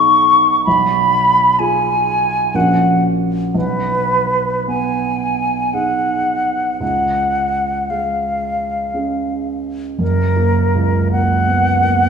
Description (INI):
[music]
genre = classical, romantic duo for flute and grand piano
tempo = 51-65 BPM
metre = 3/4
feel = rubato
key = F# major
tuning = A4 = 440 Hz
[part]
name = concert flute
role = melody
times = 0.0-12.1 s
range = A#4 to C#6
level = -15 LUFS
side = left 1 dB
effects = none
[part]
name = dark baby grand piano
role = accompaniment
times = 0.0-12.1 s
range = F#1 to A#4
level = -18 LUFS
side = right 2 dB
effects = none
[sound]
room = wet concert hall reverb, RT60 1.9 s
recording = recorded in a church or concert hall, small room ambience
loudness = -14 LUFS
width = side -6 dB against mid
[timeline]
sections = 0.0-10.0 A section; 10.0-12.1 B section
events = none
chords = 0.0 G#m/B; 0.7 Fdim/Cb; 2.5 F#/A#; 3.5 G#m/B; 6.8 C#; 10.0 F#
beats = | 0.66 1.59 2.54 | 3.55 4.68 5.74 | 6.81 7.91 8.96 | 10.01 11.12